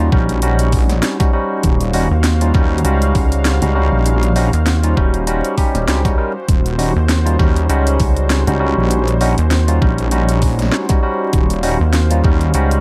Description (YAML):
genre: glitch hop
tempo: 99 BPM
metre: 4/4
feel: swing 56% on 16ths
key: Eb dorian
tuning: A4 = 442 Hz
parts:
  - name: warm analog pad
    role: sustained chords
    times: 0.0-12.8 s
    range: F#4 to F5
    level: -29 LUFS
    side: equal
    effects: chorus, tremolo, sidechain pumping
  - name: barky tine electric piano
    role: stabs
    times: 0.0-12.8 s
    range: G3 to Bb4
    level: -22 LUFS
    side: equal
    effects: phaser, sidechain pumping, delay
  - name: rubbery square bass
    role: bass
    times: 0.0-12.8 s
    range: Eb1 to Eb2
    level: -17 LUFS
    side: equal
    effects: tube saturation
  - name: wobble bass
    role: bass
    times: 0.1-12.5 s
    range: Eb1 to Eb2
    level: -18 LUFS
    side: equal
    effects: chorus
  - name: electronic kick drum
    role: drums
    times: 0.1-12.4 s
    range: none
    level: -18 LUFS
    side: equal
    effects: overdrive
  - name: drum and bass drum kit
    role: drums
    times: 0.3-12.8 s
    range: hi-hat, snare drum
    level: -24 LUFS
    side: equal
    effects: overdrive
room: little or no reverb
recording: vinyl crackle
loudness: -15 LUFS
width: mono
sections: 0.0-12.8 A section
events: none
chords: 0.0 Eb7#9